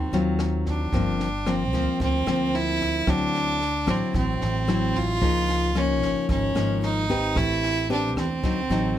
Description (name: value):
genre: bossa nova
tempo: 112 BPM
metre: 4/4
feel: straight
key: unclear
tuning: A4 = 439 Hz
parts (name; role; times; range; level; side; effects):
- rich fiddle; melody; 0.0-9.0 s; C4 to F4; -26 LUFS; right 1 dB; none
- nylon-string guitar; accompaniment; 0.0-9.0 s; G2 to B4; -26 LUFS; left 3 dB; none
- upright bass; bass; 0.0-9.0 s; G1 to E2; -28 LUFS; right 1 dB; none
- compact cocktail drum kit; drums; 0.1-8.8 s; kick drum, rim click, snare drum; -31 LUFS; equal; none
room: little or no reverb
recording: close, detailed microphones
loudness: -21 LUFS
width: side -11 dB against mid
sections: 0.0-9.0 A section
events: none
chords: 0.0 Ab6 (rootless); 0.9 Gm7; 3.1 D9; 5.2 Db69; 7.4 Am9; 8.4 D7b9